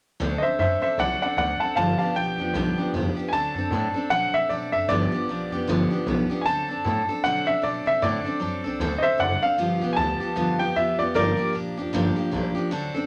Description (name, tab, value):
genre	rockabilly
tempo	154 BPM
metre	4/4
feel	swing 59% on 8ths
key	unclear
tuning	A4 = 439 Hz
part	picked steel-string acoustic guitar	accompaniment	0.2-13.1 s	G2 to A4	-29 LUFS	equal	none
part	upright bass	bass	0.2-13.1 s	F1 to C3	-33 LUFS	equal	none
part	clear upright piano	melody	0.4-11.5 s	Bb4 to A5	-26 LUFS	equal	none
room	moderate large studio reverb, RT60 0.8 s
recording	none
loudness	-24 LUFS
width	mono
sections	0.2-3.3 A section; 3.3-13.1 B section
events	none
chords	0.2 D7; 1.8 G7; 3.3 D7; 4.9 G7; 6.5 D7; 9.6 G7; 11.2 Gm7